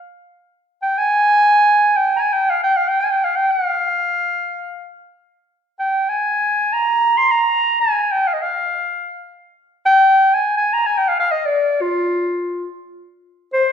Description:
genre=Turkish makam ensemble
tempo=free time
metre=none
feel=none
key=F makam huseyni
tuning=A4 = 442 Hz
part: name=warm clarinet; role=solo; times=0.0-13.7 s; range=F4 to C6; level=-15 LUFS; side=equal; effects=none
room=wet recital hall reverb, RT60 1.4 s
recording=recorded in a church or concert hall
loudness=-15 LUFS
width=side -8 dB against mid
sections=0.0-13.7 A section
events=none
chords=none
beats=free time

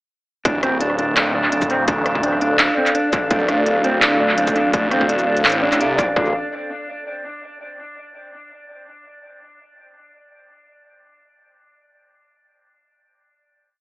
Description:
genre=half-time drum and bass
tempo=168 BPM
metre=4/4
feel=swing 54% on 16ths, half-time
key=D minor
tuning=A4 = 441 Hz
part: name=dark analog pad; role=sustained chords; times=0.5-6.3 s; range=D4 to F5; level=-22 LUFS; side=equal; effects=chorus, sidechain pumping
part: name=mellow electric guitar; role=arpeggios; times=0.5-6.3 s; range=C4 to D5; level=-22 LUFS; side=equal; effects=dub echo
part: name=phased detuned saw bass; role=bass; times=0.5-6.3 s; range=D1 to C2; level=-22 LUFS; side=equal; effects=phaser, tube saturation
part: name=electronic kick drum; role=drums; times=0.5-6.2 s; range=none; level=-23 LUFS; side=equal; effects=distortion
part: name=industrial drum kit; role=drums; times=0.5-6.1 s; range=handclaps, hi-hat, rim click, shaker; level=-20 LUFS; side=equal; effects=analog delay
room=moderate plate reverb, RT60 2.2 s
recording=echo-heavy mix, AM radio sound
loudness=-16 LUFS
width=side -19 dB against mid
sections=0.5-6.2 drop; 6.2-7.6 final chord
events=drop 0.5-6.2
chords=0.5 Dm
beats=| 0.45 0.81 1.17 1.52 | 1.88 2.24 2.59 2.95 | 3.31 3.67 4.02 4.38 | 4.74 5.09 5.45 5.81 | 6.17

